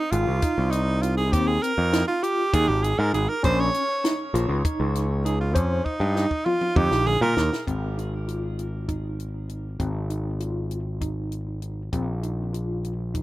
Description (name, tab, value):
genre	progressive instrumental, band music in an uneven meter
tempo	198 BPM (eighths)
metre	7/8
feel	straight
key	Ab major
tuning	A4 = 440 Hz
part	bright tenor saxophone	melody	0.0-7.6 s	Db4 to Db5	-26 LUFS	right 2 dB	tape echo
part	tine electric piano	arpeggios	0.1-13.2 s	C4 to C5	-30 LUFS	equal	medium tremolo, tape echo
part	overdriven picked electric bass	bass	0.1-13.2 s	Ab1 to Bb2	-25 LUFS	equal	none
part	compact cocktail drum kit	drums	0.1-13.2 s	hi-hat, kick drum, snare drum, toms	-27 LUFS	equal	none
room	little or no reverb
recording	rough home demo mix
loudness	-22 LUFS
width	side -16 dB against mid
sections	0.0-7.7 A section; 7.7-13.2 B section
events	tenor saxophone solo 0.0-7.7; drum fill 5.9-7.7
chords	0.0 Ab6; 3.4 Bbm; 7.7 Ab5; 11.9 Bbsus2